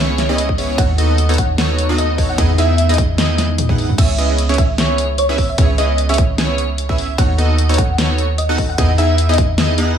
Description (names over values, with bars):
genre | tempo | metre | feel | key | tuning
future bass | 150 BPM | 4/4 | swing 55% on 16ths, half-time | C# minor | A4 = 440 Hz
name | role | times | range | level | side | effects
ethereal airy pad | sustained chords | 0.1-4.0 s | C#3 to E4 | -28 LUFS | equal | none
airy dreamy lead | arpeggios | 0.0-10.0 s | C#5 to F#5 | -24 LUFS | equal | chorus, sidechain pumping, digital delay
supersaw stab | riff | 0.0-10.0 s | B3 to F#5 | -21 LUFS | right 1 dB | cassette tape, sidechain pumping, digital delay
warm 808-style bass | bass | 0.0-10.0 s | C#2 to E2 | -17 LUFS | right 1 dB | sidechain pumping
big-room dance drum kit | drums | 0.2-9.9 s | crash cymbal, hi-hat, ride cymbal, snare drum, toms | -21 LUFS | left 1 dB | none
electronic kick drum | drums | 0.5-9.5 s | none | -17 LUFS | right 1 dB | none
thumb-piano-like synth pluck | melody | 0.8-9.4 s | C#5 to F#5 | -23 LUFS | left 1 dB | ensemble chorus, sidechain pumping, dub echo
room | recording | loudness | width
little or no reverb | none | -13 LUFS | side -8 dB against mid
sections
0.0-4.0 A section; 4.0-10.0 A section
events
drop 0.0-4.0, 4.0-10.0; drum fill 3.4-4.0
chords
0.0 C#m7; 0.8 B9/D#; 2.4 Emaj7; 4.0 C#m7; 7.2 B9/D#; 8.8 Emaj7